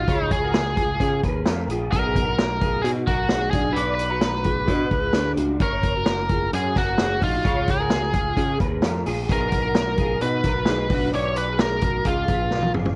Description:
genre	jangly indie pop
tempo	130 BPM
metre	4/4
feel	straight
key	unclear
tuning	A4 = 440 Hz
part	biting lead guitar	melody	0.0-12.7 s	E#4 to C#5	-27 LUFS	equal	overdrive, slapback echo
part	electric guitar through a small old amp	arpeggios	0.0-13.0 s	B3 to A#5	-30 LUFS	equal	ensemble chorus, slapback echo
part	modern bright picked electric bass	bass	0.0-12.9 s	F#1 to C#3	-30 LUFS	equal	none
part	vintage drum kit	drums	0.1-13.0 s	hi-hat, kick drum, snare drum, toms	-26 LUFS	equal	none
room	little or no reverb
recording	worn, warbling old tape, cassette tape, warbly pitch drift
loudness	-22 LUFS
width	mono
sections	0.0-13.0 A section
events	drum fill 12.5-13.0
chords	0.1 C#; 1.9 G#m7/B; 3.5 Bm; 5.6 F#; 7.4 C#7; 9.3 G#m7/B; 10.9 Bm; 12.1 C#7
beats	| 0.08 0.54 1.00 1.46 | 1.92 2.38 2.84 3.30 | 3.77 4.22 4.69 5.15 | 5.61 6.07 6.53 6.99 | 7.45 7.91 8.37 8.83 | 9.29 9.75 10.21 10.67 | 11.13 11.59 12.05 12.51

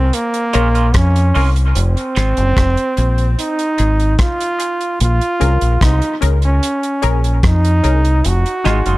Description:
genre	dub reggae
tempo	74 BPM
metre	4/4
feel	straight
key	unclear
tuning	A4 = 440 Hz
part	brilliant trombone	melody	0.0-9.0 s	Bb3 to Gb4	-18 LUFS	right 1 dB	dub echo
part	deep dub fingered electric bass	bass	0.0-9.0 s	F1 to F2	-14 LUFS	equal	none
part	damped 70s drum kit	drums	0.1-9.0 s	hi-hat, kick drum, rim click	-18 LUFS	equal	none
part	twangy electric guitar	accompaniment	0.5-2.3, 8.7-9.0 s	Ab3 to F4	-24 LUFS	right 4 dB	high-pass filter, dub echo
part	filtered dub chord stab	stabs	0.5-8.8 s	Db4 to Bb4	-26 LUFS	left 7 dB	chorus, high-pass filter, dub echo
room	small room ambience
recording	none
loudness	-12 LUFS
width	side -19 dB against mid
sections	0.0-9.0 A section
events	filter sweep 0.0-5.0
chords	0.0 Bbm7; 1.8 Fm7; 5.0 Bbm7; 8.2 Fm7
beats	0.13 0.94 | 1.75 2.56 3.38 4.19 | 5.00 5.81 6.62 7.43 | 8.24

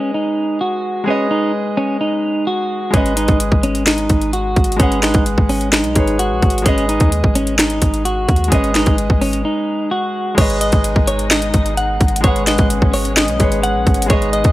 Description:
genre	hip hop, trap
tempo	129 BPM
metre	4/4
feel	half-time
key	G# minor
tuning	A4 = 438 Hz
part	clean electric guitar	melody	0.0-14.5 s	C#4 to F#5	-19 LUFS	equal	analog delay
part	clear concert grand piano	accompaniment	0.0-14.5 s	G#3 to F#5	-20 LUFS	equal	none
part	warm 808-style bass	bass	2.9-14.5 s	G#1 to D#2	-20 LUFS	equal	none
part	trap drum kit	drums	2.9-14.5 s	crash cymbal, finger snaps, hi-hat, kick drum, snare drum	-15 LUFS	equal	overdrive
part	muted chamber string section	sustained chords	10.4-14.5 s	B2 to D#4	-26 LUFS	left 3 dB	none
room	little or no reverb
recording	dry, gritty hardware recording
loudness	-13 LUFS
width	side -16 dB against mid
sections	0.0-10.4 A section; 10.4-14.5 B section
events	break 9.4-10.4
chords	0.0 G#m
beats	0.15 0.61 | 1.08 1.54 2.01 2.47 | 2.94 3.40 3.87 4.33 | 4.80 5.26 5.73 6.19 | 6.66 7.12 7.59 8.05 | 8.52 8.98 9.45 9.91 | 10.38 10.84 11.31 11.77 | 12.24 12.70 13.17 13.63 | 14.10

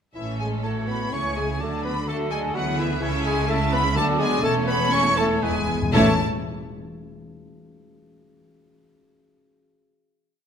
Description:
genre	quick classical-period movement for symphony orchestra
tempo	125 BPM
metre	3/4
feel	rubato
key	A major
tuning	A4 = 443 Hz
part	warm French horn section	sustained chords	0.1-6.1 s	E3 to C#4	-30 LUFS	left 3 dB	none
part	rich studio violin section	melody	0.2-6.2 s	E5 to C#6	-29 LUFS	equal	none
part	mellow hollow silver concert flute	second line	0.2-6.2 s	E5 to C#6	-29 LUFS	left 1 dB	none
part	warm clarinet	second line	0.2-6.1 s	E4 to C#5	-31 LUFS	left 2 dB	none
part	warm studio violin section	second line	0.2-6.2 s	B3 to C#5	-31 LUFS	left 1 dB	none
part	rich studio viola section	accompaniment	0.2-6.2 s	E3 to C#4	-30 LUFS	right 1 dB	none
part	rich studio cello section	bass	0.2-6.2 s	E2 to D3	-28 LUFS	right 1 dB	none
part	rich studio double bass section	bass	0.2-6.2 s	E1 to D2	-29 LUFS	right 4 dB	none
part	clear oboe	second line	0.6-6.1 s	A4 to E5	-32 LUFS	right 1 dB	none
part	timpani	percussion	5.4-6.2 s	E2 to A2	-30 LUFS	left 3 dB	none
room	moderate scoring stage reverb, RT60 1.6 s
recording	none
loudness	-20 LUFS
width	side -8 dB against mid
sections	0.2-5.9 A section; 5.9-7.4 final chord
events	timpani fill 5.4-5.9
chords	0.2 A; 1.6 D; 2.6 E7/D; 3.0 A/C#; 4.0 Bm7/D; 4.4 A/E; 5.4 E; 5.9 A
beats	| 0.16 0.65 1.13 | 1.60 2.08 2.55 | 3.02 3.49 3.97 | 4.45 4.93 5.43 | 5.93

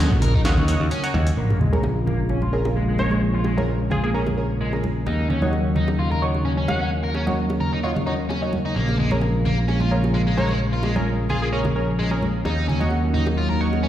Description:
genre	breakbeat, breaks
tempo	130 BPM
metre	4/4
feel	swing 54% on 16ths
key	Bb minor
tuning	A4 = 440 Hz
part	lush unison pad	sustained chords	0.0-13.9 s	Db3 to F4	-26 LUFS	equal	chorus, sidechain pumping
part	modern bright picked electric bass	bass	0.0-13.9 s	Bb1 to Eb2	-23 LUFS	equal	low-pass filter
part	breakbeat sampler-style drum kit	drums	0.1-1.4 s	hi-hat, kick drum, snare drum	-21 LUFS	equal	none
part	overdriven electric guitar	riff	0.2-13.9 s	Ab3 to Bb4	-28 LUFS	equal	vintage 12-bit sampler grit, low-pass filter, dub echo
part	congas and bongos	percussion	0.2-13.8 s	none	-28 LUFS	equal	none
part	band-passed chord stab	stabs	0.5-13.8 s	Db4 to Db5	-29 LUFS	right 1 dB	chorus, phaser, dub echo
part	sub drop	sound effects	1.4-3.2 s	none	-26 LUFS	equal	none
part	plucky unison lead	melody	3.0-6.8, 10.4-11.5 s	Ab4 to Gb5	-31 LUFS	left 1 dB	phaser, telephone sound, dub echo
room	moderate lush hall reverb, RT60 1.5 s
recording	played on a big sound system in a bare room, stone room reverb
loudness	-19 LUFS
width	side -11 dB against mid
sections	0.0-1.4 A section; 1.4-13.9 B section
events	break 0.5-1.4; impact 1.4-3.2; filter sweep on overdriven electric guitar 1.4-13.9; filter sweep on synth stab 1.4-13.9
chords	0.0 Ebm7; 1.4 Bbm7; 5.1 Ebm7; 8.8 Bbm7; 12.5 Ebm7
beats	0.45 0.91 | 1.38 1.84 2.30 2.76 | 3.22 3.68 4.14 4.61 | 5.07 5.53 5.99 6.45 | 6.91 7.38 7.84 8.30 | 8.76 9.22 9.68 10.14 | 10.61 11.07 11.53 11.99 | 12.45 12.91 13.38 13.84

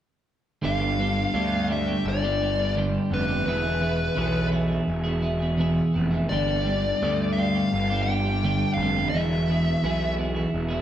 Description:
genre	rock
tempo	85 BPM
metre	4/4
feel	straight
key	G mixolydian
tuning	A4 = 440 Hz
part	twelve-string electric guitar	riff	0.6-10.8 s	E2 to G#4	-25 LUFS	right 1 dB	none
part	fuzz picked electric bass	bass	0.6-10.8 s	E1 to D2	-28 LUFS	left 1 dB	overdrive
part	fuzz lead guitar	melody	0.7-10.1 s	B4 to G5	-27 LUFS	left 2 dB	distortion
room	wet large studio reverb, RT60 1.3 s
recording	band playing live in one room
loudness	-22 LUFS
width	side -11 dB against mid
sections	0.6-10.8 A section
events	none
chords	0.6 G; 3.5 E; 6.3 G; 9.1 E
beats	| 0.64 1.34 2.05 2.76 | 3.47 4.17 4.88 5.59 | 6.30 7.00 7.71 8.42 | 9.12 9.83 10.54

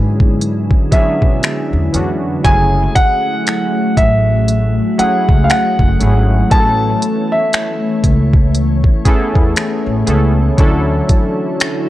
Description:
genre	contemporary R&B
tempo	59 BPM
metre	4/4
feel	swing 58% on 16ths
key	F# minor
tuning	A4 = 438 Hz
part	warm analog keys	accompaniment	0.0-11.9 s	E3 to A4	-20 LUFS	right 1 dB	chorus
part	glassy FM pad	sustained chords	0.0-11.9 s	D3 to C#5	-20 LUFS	left 1 dB	ensemble chorus, built-in reverb
part	upright bass	bass	0.0-11.0 s	F#1 to B2	-15 LUFS	equal	none
part	smooth R&B drum kit	drums	0.2-11.9 s	finger snaps, hi-hat, kick drum	-13 LUFS	equal	none
part	dark grand piano	melody	0.9-9.3 s	E5 to A5	-17 LUFS	equal	analog delay
room	digital ambience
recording	dry, gritty hardware recording, cassette tape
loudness	-11 LUFS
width	side -15 dB against mid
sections	0.0-11.9 A section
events	none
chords	0.0 E13; 2.4 F#m7; 6.5 Amaj7; 10.6 Dmaj9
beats	0.41 1.43 | 2.45 3.47 4.48 5.50 | 6.52 7.53 8.55 9.57 | 10.58 11.60

